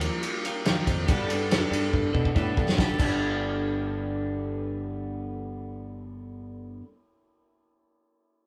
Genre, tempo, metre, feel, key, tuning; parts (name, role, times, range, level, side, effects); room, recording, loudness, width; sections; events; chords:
folk rock and heartland rock; 141 BPM; 4/4; straight; G major; A4 = 440 Hz
picked twelve-string acoustic guitar; accompaniment; 0.0-6.9 s; G2 to A4; -37 LUFS; equal
twelve-string electric guitar; riff; 0.0-6.8 s; Eb3 to Bb4; -34 LUFS; equal
fingered electric bass; bass; 0.0-6.8 s; G1 to B2; -35 LUFS; equal
loose indie drum kit; drums; 0.0-3.1 s; crash cymbal, kick drum, ride cymbal, snare drum; -29 LUFS; equal
moderate studio reverb, RT60 0.5 s; band playing live in one room; -27 LUFS; mono
0.0-2.8 A section; 2.8-6.2 B section
drum fill 1.9-2.8
0.0 Ebadd9; 1.1 Gadd9